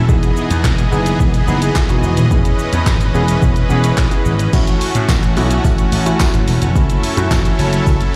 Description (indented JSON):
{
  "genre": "dance-pop",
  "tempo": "108 BPM",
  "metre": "4/4",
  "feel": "straight",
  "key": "unclear",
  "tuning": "A4 = 440 Hz",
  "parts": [
    { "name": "supersaw chords", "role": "sustained chords", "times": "0.0-8.2 s", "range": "E3 to D#5", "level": "-24 LUFS", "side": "equal", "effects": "sidechain pumping" },
    { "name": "warm analog keys", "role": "accompaniment", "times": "0.1-7.9 s", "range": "A3 to G#4", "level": "-24 LUFS", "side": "equal", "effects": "chorus, sidechain pumping" },
    { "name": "vintage slap bass", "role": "bass", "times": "0.1-8.1 s", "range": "D#1 to A2", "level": "-18 LUFS", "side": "equal", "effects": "sidechain pumping" },
    { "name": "deep house drum kit", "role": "drums", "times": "0.1-8.1 s", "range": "crash cymbal, handclaps, hi-hat, kick drum, shaker, snare drum", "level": "-18 LUFS", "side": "equal", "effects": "none" },
    { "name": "tambourine", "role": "percussion", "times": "4.5-8.0 s", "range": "none", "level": "-38 LUFS", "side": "equal", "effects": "none" }
  ],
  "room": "light reverb",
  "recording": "played on a big sound system in a bare room, stone room reverb",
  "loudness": "-15 LUFS",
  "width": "mono",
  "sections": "0.0-4.5 A section; 4.5-8.2 B section",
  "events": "none",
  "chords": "0.1 Emaj7; 2.3 C#m7/E; 4.5 A6; 6.8 F#m7",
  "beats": "| 0.09 0.64 1.20 1.75 | 2.31 2.87 3.42 3.98 | 4.53 5.09 5.64 6.20 | 6.75 7.31 7.87"
}